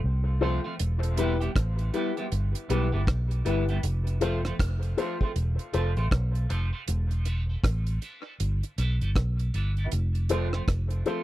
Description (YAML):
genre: dub reggae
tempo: 79 BPM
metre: 4/4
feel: swing 61% on 16ths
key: E phrygian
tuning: A4 = 438 Hz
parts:
  - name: vintage muted fingered electric bass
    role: bass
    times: 0.0-11.0 s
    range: E1 to C2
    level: -26 LUFS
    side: equal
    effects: none
  - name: semi-hollow electric guitar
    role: accompaniment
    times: 0.4-11.2 s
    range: F3 to G4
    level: -35 LUFS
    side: right 3 dB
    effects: lush chorus, high-pass filter, dub echo
  - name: dark upright piano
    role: stabs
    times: 0.4-11.2 s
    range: E4 to C5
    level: -32 LUFS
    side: left 6 dB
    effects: high-pass filter, dub echo
  - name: deep reggae drum kit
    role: drums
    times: 0.8-11.2 s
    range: hi-hat, kick drum, rim click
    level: -28 LUFS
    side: equal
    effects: none
room: little or no reverb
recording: dry, close 1970s-style studio recording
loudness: -25 LUFS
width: side -15 dB against mid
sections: 0.8-11.2 A section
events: break 0.0-0.8; filter sweep 3.8-9.9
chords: 0.0 F; 0.8 Em; 3.8 F; 6.9 Em; 9.9 F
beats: 0.04 | 0.80 1.55 2.31 3.07 | 3.83 4.59 5.36 6.12 | 6.88 7.63 8.39 9.16 | 9.92 10.68